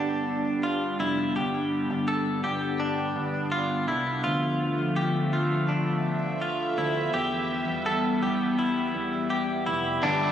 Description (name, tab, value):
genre	dream pop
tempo	83 BPM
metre	4/4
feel	straight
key	G mixolydian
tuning	A4 = 440 Hz
part	phased analog pad	sustained chords	0.0-10.3 s	D3 to B5	-27 LUFS	equal	phaser, chorus
part	direct-recorded clean electric guitar	arpeggios	0.0-10.3 s	D4 to A4	-28 LUFS	left 1 dB	wide subtle chorus, tape echo
part	fingered electric bass	bass	0.0-10.3 s	F1 to E2	-34 LUFS	equal	none
part	raw garage guitar	accompaniment	10.0-10.3 s	G2 to G4	-28 LUFS	right 3 dB	overdrive, tremolo, wide subtle chorus
room	moderate lush hall reverb, RT60 2.9 s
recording	recorded on a phone in the room, studio reverb, compression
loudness	-24 LUFS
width	side -9 dB against mid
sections	0.0-10.0 A section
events	none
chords	0.0 G; 4.2 Dm6; 7.1 Em